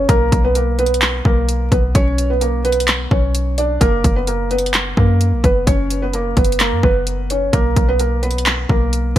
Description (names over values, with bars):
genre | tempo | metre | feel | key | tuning
hip hop, trap | 129 BPM | 4/4 | half-time | unclear | A4 = 442 Hz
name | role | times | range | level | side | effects
felt-muted upright piano | melody | 0.0-9.2 s | A#3 to D5 | -19 LUFS | right 1 dB | wide subtle chorus, ping-pong delay
clean 808-style bass | bass | 0.0-9.2 s | F#1 to F#2 | -18 LUFS | equal | none
trap drum kit | drums | 0.1-9.2 s | handclaps, hi-hat, kick drum | -16 LUFS | equal | overdrive
room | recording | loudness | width
light reverb | bright 1980s-style digital production, vinyl crackle | -14 LUFS | side -12 dB against mid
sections
0.1-9.2 A section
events
none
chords
0.1 N.C.; 3.8 F#; 7.5 N.C.